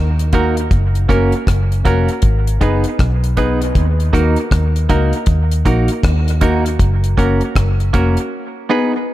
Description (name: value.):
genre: dub reggae.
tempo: 79 BPM.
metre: 4/4.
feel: swing 62% on 16ths.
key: Eb minor.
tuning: A4 = 440 Hz.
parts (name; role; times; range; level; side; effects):
vintage muted fingered electric bass; bass; 0.0-8.2 s; F1 to Eb2; -15 LUFS; equal; none.
deep reggae drum kit; drums; 0.2-8.3 s; hi-hat, kick drum, rim click; -17 LUFS; equal; none.
semi-hollow electric guitar; accompaniment; 0.3-9.0 s; Bb3 to Cb5; -22 LUFS; right 7 dB; dub echo.
dark upright piano; stabs; 0.3-8.9 s; Bb3 to Cb5; -20 LUFS; left 2 dB; dub echo.
room: light reverb, small room ambience.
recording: echo-heavy mix.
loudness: -13 LUFS.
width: side -15 dB against mid.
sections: 0.0-9.1 A section.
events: break 8.3-9.1.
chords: 0.0 Ebm; 0.7 Gb; 2.2 Abm; 3.8 Ebm; 6.8 Gb; 8.3 Abm.